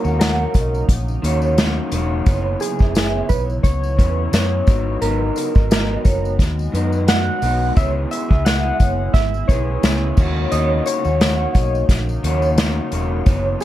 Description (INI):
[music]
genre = indie pop, bedroom pop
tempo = 87 BPM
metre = 4/4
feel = swing 55% on 16ths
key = unclear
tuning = A4 = 435 Hz
[part]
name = soft electric-piano-like synth keys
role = melody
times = 0.0-13.6 s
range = G#4 to F#5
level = -24 LUFS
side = equal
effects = wide subtle chorus, slapback echo
[part]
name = vibraphone with medium mallets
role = second line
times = 0.0-13.4 s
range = B4 to F#5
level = -26 LUFS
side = right 3 dB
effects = ensemble chorus, slapback echo
[part]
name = electric guitar through a small old amp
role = accompaniment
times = 0.0-13.6 s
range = F#2 to G#4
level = -26 LUFS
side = left 2 dB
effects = wide subtle chorus, vibrato effect
[part]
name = granular cloud pad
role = sustained chords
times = 0.0-13.6 s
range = C#3 to F#4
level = -30 LUFS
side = equal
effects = built-in reverb
[part]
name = vintage muted fingered electric bass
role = bass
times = 0.0-13.5 s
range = E1 to F#2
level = -21 LUFS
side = equal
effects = none
[part]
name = tambourine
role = percussion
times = 0.0-13.6 s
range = none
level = -40 LUFS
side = left 6 dB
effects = none
[part]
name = unplugged drum kit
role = drums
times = 0.2-13.6 s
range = crash cymbal, hi-hat, kick drum, snare drum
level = -17 LUFS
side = equal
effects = none
[sound]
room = light reverb, small room ambience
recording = dark, warm production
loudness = -15 LUFS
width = side -13 dB against mid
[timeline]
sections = 0.0-13.6 A section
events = none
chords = 0.0 D#m7; 2.3 F#7sus4; 4.7 G#m7; 7.8 C#m7; 10.2 D#m7